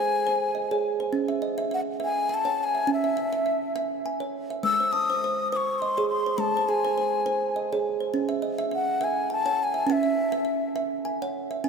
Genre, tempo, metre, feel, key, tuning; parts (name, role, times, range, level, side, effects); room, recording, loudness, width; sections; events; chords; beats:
world meditative, meditative tuned percussion; 103 BPM; 3/4; swing 55% on 16ths; A4 = 440 Hz
breathy bansuri; melody; 0.0-10.8 s; E5 to E6; -26 LUFS; left 3 dB; dub echo
kalimba; arpeggios; 0.0-11.7 s; G#3 to A5; -26 LUFS; right 4 dB
wet plate reverb, RT60 3.4 s; echo-heavy mix; -24 LUFS; side -5 dB against mid
0.0-11.7 A section
0.0 G#; 1.1 C#m; 4.6 G#; 8.1 C#m
0.56 | 1.14 1.72 2.31 | 2.89 3.47 4.05 | 4.63 5.22 5.80 | 6.39 6.97 7.55 | 8.14 8.72 9.31 | 9.90 10.48 11.07 | 11.66